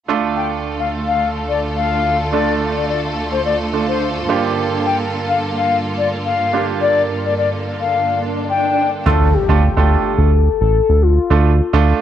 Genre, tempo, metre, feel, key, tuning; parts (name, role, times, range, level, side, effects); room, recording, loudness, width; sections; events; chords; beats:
pop; 107 BPM; 4/4; straight; D minor; A4 = 441 Hz
clear concert grand piano; accompaniment; 0.1-12.0 s; A3 to A4; -21 LUFS; right 8 dB; cassette tape
clear symphonic string section; sustained chords; 0.1-9.0 s; D2 to A4; -22 LUFS; right 1 dB; cassette tape
concert flute; melody; 0.4-8.9 s; C5 to G5; -19 LUFS; left 5 dB; cassette tape
swell and impact; sound effects; 7.8-11.3 s; -25 LUFS; equal
warm velvety synth lead; melody; 9.1-11.9 s; F4 to A4; -18 LUFS; left 8 dB; chorus, cassette tape
round analog bass; bass; 9.1-11.9 s; A1 to D2; -13 LUFS; right 1 dB
moderate spring reverb, RT60 2.4 s; home recording on cassette; -14 LUFS; side -10 dB against mid
0.1-9.1 A section; 9.1-12.0 B section
swell 7.8-9.1; impact 9.1-11.3
0.1 Dm; 4.3 Gm7; 9.1 Dm
| 0.09 0.65 1.21 1.77 | 2.33 2.89 3.45 4.01 | 4.57 5.13 5.70 6.26 | 6.82 7.38 7.94 8.50 | 9.06 9.62 10.18 10.74 | 11.30 11.86